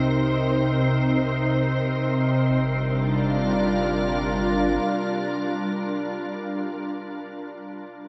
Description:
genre	ambient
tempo	free time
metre	none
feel	none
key	G minor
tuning	A4 = 440 Hz
part	soft additive organ-like pad	sustained chords	0.0-6.4 s	C3 to Bb4	-24 LUFS	equal	ensemble chorus, built-in reverb
part	round analog bass	bass	0.0-4.8 s	G1 to C2	-41 LUFS	equal	none
part	wind-like tuned noise texture	texture	0.0-2.5 s	C5 to C6	-34 LUFS	equal	built-in reverb, ensemble chorus
room	wet lush hall reverb, RT60 2.8 s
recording	dreamy mix soaked in reverb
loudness	-24 LUFS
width	mono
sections	0.0-2.5 A section; 2.5-5.6 B section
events	none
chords	0.0 Cm7; 2.5 Gm7

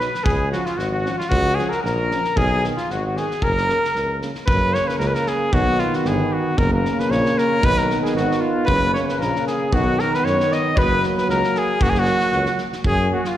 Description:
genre	balkan folk, Balkan brass band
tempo	114 BPM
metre	2/4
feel	swing 54% on 16ths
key	F# major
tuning	A4 = 440 Hz
part	clear cornet	melody	0.0-13.4 s	E#4 to D#5	-21 LUFS	equal	none
part	mellow trumpet	second line	0.0-4.2, 7.6-13.4 s	E#4 to D#5	-27 LUFS	left 3 dB	none
part	mellow French horn	accompaniment	0.0-13.2 s	A#3 to C#4	-27 LUFS	left 2 dB	none
part	warm euphonium	accompaniment	0.0-13.2 s	C#3 to F#3	-26 LUFS	right 3 dB	none
part	loose indie drum kit	percussion	0.0-13.3 s	kick drum, snare drum	-26 LUFS	equal	none
part	warm tuba	bass	0.2-13.1 s	F#1 to F#2	-25 LUFS	equal	none
room	moderate concert hall reverb, RT60 2.2 s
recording	recorded in a church or concert hall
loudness	-17 LUFS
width	side -12 dB against mid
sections	0.0-4.5 A section; 4.5-12.8 B section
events	none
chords	0.3 C#; 2.4 B; 3.4 F#; 5.5 B; 6.6 F#; 7.6 B; 8.7 F#; 9.7 B; 10.8 F#

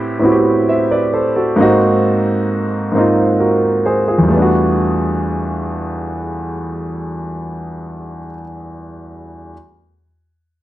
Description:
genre	R&B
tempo	44 BPM (dotted quarters)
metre	6/8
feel	straight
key	unclear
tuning	A4 = 440 Hz
part	warm grand piano	accompaniment	0.0-9.5 s	E2 to E5	-14 LUFS	right 1 dB	none
room	moderate studio reverb, RT60 0.9 s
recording	none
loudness	-13 LUFS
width	side -14 dB against mid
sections	0.0-4.3 A section; 4.3-7.0 B section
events	none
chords	0.0 Am7; 1.6 G#9; 4.3 Em11

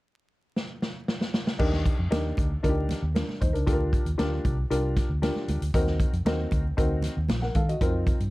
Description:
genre	uptempo 1960s-style soul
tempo	116 BPM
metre	4/4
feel	straight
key	unclear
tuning	A4 = 440 Hz
part	vintage drum kit	drums	0.6-8.3 s	crash cymbal, hi-hat, kick drum, snare drum	-27 LUFS	equal	none
part	warm upright piano	accompaniment	1.6-8.2 s	C4 to Gb5	-30 LUFS	left 1 dB	none
part	vintage muted fingered electric bass	bass	1.6-8.3 s	Bb1 to Eb3	-28 LUFS	equal	none
part	congas	percussion	2.1-8.2 s	none	-37 LUFS	right 3 dB	none
room	light reverb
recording	dark, warm production, vinyl crackle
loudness	-24 LUFS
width	side -19 dB against mid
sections	0.0-1.6 A section; 1.6-8.3 B section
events	drum fill 0.6-1.6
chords	0.0 N.C.; 1.6 Ebmaj7; 3.7 Bb6; 5.7 Ebm6

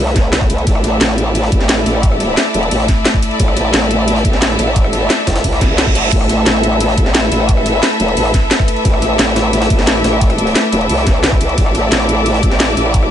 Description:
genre	dark technical drum and bass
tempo	176 BPM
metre	4/4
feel	straight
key	A minor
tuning	A4 = 438 Hz
part	bright chamber string section	sustained chords	0.0-13.1 s	A3 to D5	-19 LUFS	equal	sidechain pumping
part	growl bass	bass	0.0-13.1 s	E1 to C2	-16 LUFS	equal	chorus, tube saturation, sidechain pumping
part	rich studio string section	texture	0.0-13.1 s	A4 to D6	-20 LUFS	left 2 dB	sidechain pumping
part	drum and bass drum kit	drums	0.1-13.1 s	crash cymbal, hi-hat, rim click, snare drum	-17 LUFS	equal	none
part	jungle sampler-style drum kit	drums	0.1-13.0 s	hi-hat, ride cymbal, snare drum	-26 LUFS	right 1 dB	none
part	electronic kick drum	drums	0.2-13.0 s	none	-14 LUFS	equal	none
part	reverse cymbal	sound effects	5.6-6.1 s	none	-20 LUFS	right 6 dB	none
room	light reverb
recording	nothing above 10.4 kHz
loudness	-11 LUFS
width	side -10 dB against mid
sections	0.0-13.1 A section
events	reverse cymbal 5.6-6.1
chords	0.0 Amadd9

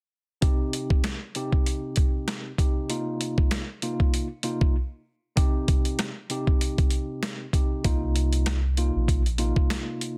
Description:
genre	hip hop, boom-bap hip-hop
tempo	97 BPM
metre	4/4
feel	swing 55% on 16ths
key	C minor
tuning	A4 = 440 Hz
part	mellow tine electric piano	accompaniment	0.4-10.2 s	C3 to G4	-33 LUFS	equal	high-pass filter, low-pass filter
part	boom bap sampler-style drum kit	drums	0.4-10.2 s	hi-hat, kick drum, snare drum	-26 LUFS	equal	none
part	soft dub sub bass	bass	7.8-9.5 s	Bb1 to C2	-27 LUFS	equal	none
room	little or no reverb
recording	dense, heavily limited modern master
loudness	-26 LUFS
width	mono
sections	0.4-5.4 A section; 5.4-10.2 B section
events	break 4.8-5.4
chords	0.4 Cm; 2.9 Cmadd11; 5.4 Cm; 7.8 Bbsus24

